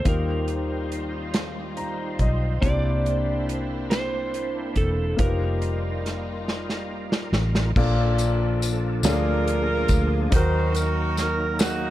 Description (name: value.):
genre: slow gospel.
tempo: 47 BPM (dotted quarters).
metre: 6/8.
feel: straight.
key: Bb major.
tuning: A4 = 440 Hz.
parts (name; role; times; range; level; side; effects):
electric slide guitar; melody; 0.0-6.9 s; A4 to D5; -31 LUFS; right 2 dB; none.
clear concert grand piano; accompaniment; 0.0-11.9 s; Bb2 to Bb5; -28 LUFS; left 3 dB; none.
bright tonewheel organ; sustained chords; 0.0-11.9 s; F3 to C5; -32 LUFS; right 2 dB; fast rotary speaker, chorus vibrato.
warm studio string section; sustained chords; 0.0-7.7 s; G3 to F4; -38 LUFS; equal; none.
vintage muted fingered electric bass; bass; 0.1-11.9 s; E1 to Eb2; -26 LUFS; equal; none.
natural country drum kit; drums; 0.1-11.8 s; crash cymbal, hi-hat, kick drum, snare drum; -25 LUFS; equal; none.
tambourine; percussion; 8.2-11.9 s; none; -34 LUFS; left 8 dB; none.
bright saxophone section; melody; 9.1-11.9 s; Bb3 to C5; -26 LUFS; right 3 dB; none.
room: light reverb, studio reverb.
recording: dark, warm production.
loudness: -21 LUFS.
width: side -14 dB against mid.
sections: 0.0-7.8 A section; 7.8-11.9 B section.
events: grand piano fill 1.3-2.6; drum fill 6.5-7.8.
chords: 0.1 Eb69; 2.6 C9; 5.2 F9sus4; 7.8 Bbmaj7; 9.0 Bb7/D; 10.3 Ebm.